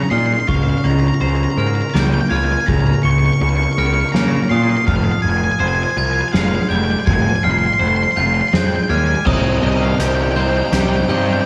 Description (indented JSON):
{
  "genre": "post-rock",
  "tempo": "82 BPM",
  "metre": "3/4",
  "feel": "straight",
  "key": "Bb dorian",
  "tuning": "A4 = 440 Hz",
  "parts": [
    { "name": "octave-fuzz lead guitar", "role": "melody", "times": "0.0-11.5 s", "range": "Eb5 to Db6", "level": "-23 LUFS", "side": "equal", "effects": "distortion, slapback echo, digital delay" },
    { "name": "glockenspiel with soft plastic mallets", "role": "arpeggios", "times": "0.0-11.5 s", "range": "Db6 to Ab7", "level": "-32 LUFS", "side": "equal", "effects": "digital delay" },
    { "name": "twelve-string electric guitar", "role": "arpeggios", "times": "0.0-11.5 s", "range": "C3 to Db5", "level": "-23 LUFS", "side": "equal", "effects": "digital delay" },
    { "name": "fuzz picked electric bass", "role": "bass", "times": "0.1-11.4 s", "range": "F1 to Db3", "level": "-21 LUFS", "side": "equal", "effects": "overdrive" },
    { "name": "soft-mallet drum kit", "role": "drums", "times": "0.5-10.9 s", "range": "crash cymbal, hi-hat, kick drum, ride cymbal, snare drum", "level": "-24 LUFS", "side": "equal", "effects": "none" },
    { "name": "overdriven electric guitar", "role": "riff", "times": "9.3-11.5 s", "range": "C3 to Eb4", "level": "-21 LUFS", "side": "equal", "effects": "slapback echo" }
  ],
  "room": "light reverb",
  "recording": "small room ambience",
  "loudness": "-16 LUFS",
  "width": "mono",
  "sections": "0.0-9.3 A section; 9.3-11.5 B section",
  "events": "build-up 0.0-9.3",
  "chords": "0.5 Bbmadd9/Db; 4.9 Fmadd9; 9.3 Cm",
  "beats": "| 0.49 1.22 1.95 | 2.68 3.41 4.14 | 4.88 5.61 6.34 | 7.07 7.80 8.54 | 9.27 10.00 10.73"
}